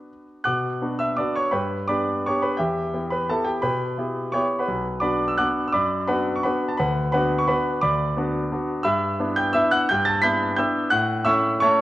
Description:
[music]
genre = classical, piano waltz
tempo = 157-184 BPM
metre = 3/4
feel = rubato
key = B minor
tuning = A4 = 444 Hz
[part]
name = bright concert grand piano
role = solo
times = 0.0-11.8 s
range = B1 to B6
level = -20 LUFS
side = equal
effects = none
[sound]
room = moderate recital hall reverb, RT60 1.4 s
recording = worn, warbling old tape, cassette tape, warbly pitch drift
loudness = -20 LUFS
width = side -15 dB against mid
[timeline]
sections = 0.5-11.8 A section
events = none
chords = 0.5 Bm; 1.5 G; 2.6 Em; 4.7 Bm; 6.8 Bm/D; 8.9 Em7/G; 10.9 A

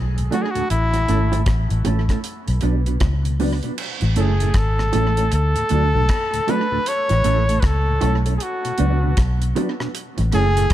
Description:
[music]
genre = roots reggae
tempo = 78 BPM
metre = 4/4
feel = swing 62% on 16ths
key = A major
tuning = A4 = 440 Hz
[part]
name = vintage muted fingered electric bass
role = bass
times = 0.0-10.7 s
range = F#1 to D2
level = -19 LUFS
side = equal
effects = none
[part]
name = mellow tonewheel organ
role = accompaniment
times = 0.2-10.6 s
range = D2 to D4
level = -30 LUFS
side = left 3 dB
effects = chorus vibrato, slow rotary speaker
[part]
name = deep reggae drum kit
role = drums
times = 0.2-10.7 s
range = crash cymbal, hi-hat, kick drum, rim click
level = -24 LUFS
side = equal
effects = tape echo
[part]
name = clear flugelhorn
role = melody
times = 0.3-10.7 s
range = E4 to C#5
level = -23 LUFS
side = equal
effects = dub echo
[part]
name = mellow electric guitar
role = accompaniment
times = 0.3-10.7 s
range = A3 to B4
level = -26 LUFS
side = right 6 dB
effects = dub echo
[part]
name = bongos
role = percussion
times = 0.3-10.3 s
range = none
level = -30 LUFS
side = right 4 dB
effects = none
[sound]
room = light reverb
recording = none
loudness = -17 LUFS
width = side -13 dB against mid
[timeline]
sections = 0.0-3.8 A section; 3.8-10.7 B section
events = none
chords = 0.0 D; 0.7 A; 2.2 Bm; 3.8 A; 5.3 D; 6.9 A; 8.4 Bm; 9.9 A

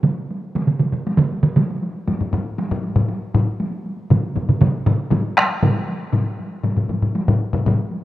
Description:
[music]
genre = japanese traditional, taiko drum ensemble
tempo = 118 BPM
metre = 4/4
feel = straight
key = none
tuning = none
[part]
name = taiko ensemble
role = percussion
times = 0.0-8.0 s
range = none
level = -26 LUFS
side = equal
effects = none
[part]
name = taiko ensemble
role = percussion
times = 0.0-5.7 s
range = none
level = -18 LUFS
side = right 3 dB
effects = none
[part]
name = taiko ensemble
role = percussion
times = 2.1-7.8 s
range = none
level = -19 LUFS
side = left 2 dB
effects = none
[sound]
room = studio reverb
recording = rough home demo mix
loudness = -18 LUFS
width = side -15 dB against mid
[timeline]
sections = 0.0-8.0 A section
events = none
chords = none

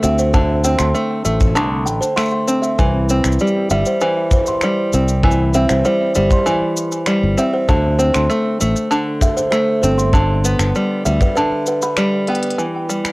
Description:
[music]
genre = folktronica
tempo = 98 BPM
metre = 4/4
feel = straight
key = C major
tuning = A4 = 442 Hz
[part]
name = buzzing kalimba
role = second line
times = 0.0-12.4 s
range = B4 to C6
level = -20 LUFS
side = right 1 dB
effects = vintage 12-bit sampler grit, cassette tape, tape echo
[part]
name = open-back banjo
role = arpeggios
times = 0.0-13.1 s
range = D3 to C4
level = -18 LUFS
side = equal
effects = low-pass filter, cassette tape, tape echo
[part]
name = fingered electric bass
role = bass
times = 0.0-11.2 s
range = G1 to D2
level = -17 LUFS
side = equal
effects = tube saturation
[part]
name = organic electronic drum kit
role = drums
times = 0.0-13.1 s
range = cabasa, finger snaps, hi-hat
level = -24 LUFS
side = left 1 dB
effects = none
[part]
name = kick drum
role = drums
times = 0.3-11.3 s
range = none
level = -17 LUFS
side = equal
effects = none
[sound]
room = light reverb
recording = home recording on cassette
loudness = -14 LUFS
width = side -22 dB against mid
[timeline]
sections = 0.0-12.6 A section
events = drum fill 12.3-12.6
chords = 0.0 D5; 2.8 C; 7.7 D5; 10.1 G; 12.6 C (rootless)

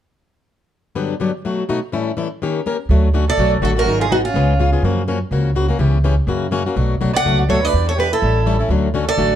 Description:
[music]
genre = acoustic string swing (jazz manouche)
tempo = 248 BPM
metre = 4/4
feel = swing 55% on 8ths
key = D major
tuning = A4 = 444 Hz
[part]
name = picked plugged-in swing-style acoustic guitar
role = accompaniment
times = 1.0-9.4 s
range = G2 to Bb4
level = -20 LUFS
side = left 4 dB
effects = none
[part]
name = upright bass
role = bass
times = 2.9-9.4 s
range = G#1 to F#2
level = -17 LUFS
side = right 1 dB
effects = none
[part]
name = picked steel-string acoustic guitar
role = melody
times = 3.3-4.7, 7.2-9.4 s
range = F4 to F#5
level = -18 LUFS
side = right 3 dB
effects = none
[part]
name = warm violin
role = second line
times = 3.3-4.7, 7.1-9.4 s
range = C#4 to D5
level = -25 LUFS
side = right 6 dB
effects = none
[sound]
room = light reverb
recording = dark, warm production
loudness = -15 LUFS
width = side -10 dB against mid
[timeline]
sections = 1.0-2.9 A section; 2.9-9.4 B section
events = none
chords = 1.0 Gmaj7; 1.4 B7; 1.9 A7; 2.4 Eb7; 2.9 Dmaj7; 3.9 G#m7; 4.3 C#7; 4.8 F#maj7; 5.8 C#m7b5; 6.3 F#7; 6.8 Bm7; 7.7 Em7; 8.2 A7; 8.7 Dmaj7

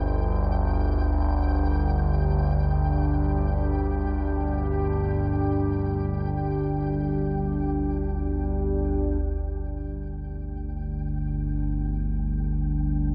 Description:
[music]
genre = dark ambient drone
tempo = free time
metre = none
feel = none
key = unclear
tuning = A4 = 440 Hz
[part]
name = deep dark ambient pad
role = sustained chords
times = 0.0-13.1 s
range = G3 to A4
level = -33 LUFS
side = equal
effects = chorus, built-in reverb
[part]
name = analog drone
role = drone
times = 0.0-13.1 s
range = G1 to D2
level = -27 LUFS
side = equal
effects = chorus
[part]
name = flickering grainy texture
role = texture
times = 0.0-13.1 s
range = G5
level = -44 LUFS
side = equal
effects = built-in reverb
[sound]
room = wet cathedral reverb, RT60 5.0 s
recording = dark, warm production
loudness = -26 LUFS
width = mono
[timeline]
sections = 0.0-9.2 A section; 9.2-13.1 B section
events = fade-out on synth texture 0.0-9.2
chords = 0.0 G5

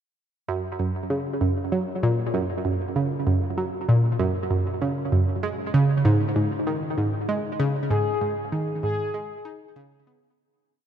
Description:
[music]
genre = ambient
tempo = 97 BPM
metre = 4/4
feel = straight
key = G# minor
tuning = A4 = 443 Hz
[part]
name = analog pluck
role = riff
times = 0.5-10.4 s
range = F#2 to D#4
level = -22 LUFS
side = right 1 dB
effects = chorus, tape echo
[part]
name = expressive portamento lead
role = melody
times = 7.9-9.7 s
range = G#4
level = -28 LUFS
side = left 3 dB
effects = analog chorus, tape echo
[sound]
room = moderate huge ambient reverb, RT60 8.3 s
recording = in a vast, echoing space, nothing above 11.0 kHz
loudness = -22 LUFS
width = side -9 dB against mid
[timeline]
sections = 0.5-10.4 A section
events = fade-out 7.1-10.4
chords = 0.5 F#; 5.4 G#5

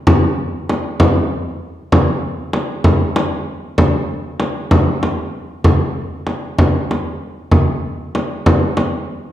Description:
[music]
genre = persian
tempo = 64 BPM (dotted quarters)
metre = 6/8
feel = straight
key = none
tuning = none
[part]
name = frame drum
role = percussion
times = 0.1-8.9 s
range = none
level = -14 LUFS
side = equal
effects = none
[sound]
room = wet recital hall reverb, RT60 1.4 s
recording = dark, warm production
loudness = -15 LUFS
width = side -12 dB against mid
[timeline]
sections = 0.1-9.3 A section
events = none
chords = none

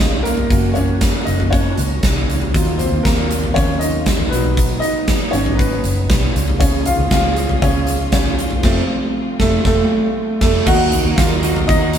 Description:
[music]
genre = piano-driven pop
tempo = 118 BPM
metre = 4/4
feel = straight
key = unclear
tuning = A4 = 440 Hz
[part]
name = clear upright piano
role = accompaniment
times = 0.0-12.0 s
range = F3 to Gb5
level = -19 LUFS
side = equal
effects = none
[part]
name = warm studio string section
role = sustained chords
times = 0.0-12.0 s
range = Db3 to Bb4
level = -27 LUFS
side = right 2 dB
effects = none
[part]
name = vintage muted fingered electric bass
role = bass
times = 0.0-12.0 s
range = F1 to Eb2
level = -20 LUFS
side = equal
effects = none
[part]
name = huge arena drum kit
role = drums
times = 0.0-12.0 s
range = crash cymbal, hi-hat, kick drum, snare drum, toms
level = -17 LUFS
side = equal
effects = none
[part]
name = direct-recorded clean electric guitar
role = riff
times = 10.7-12.0 s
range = Eb3 to Gb4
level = -24 LUFS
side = right 4 dB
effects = warbly pitch drift
[sound]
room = moderate stone room reverb, RT60 1.1 s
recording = band playing live in one room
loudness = -14 LUFS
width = side -9 dB against mid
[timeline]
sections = 0.0-10.7 A section; 10.7-12.0 B section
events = upright piano solo 0.0-10.7, 10.7-12.0; band accent 8.6-10.7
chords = 0.0 Db; 0.5 Gb; 2.5 Ebmadd9; 4.3 B; 6.4 Db; 8.6 F; 10.7 Ebm

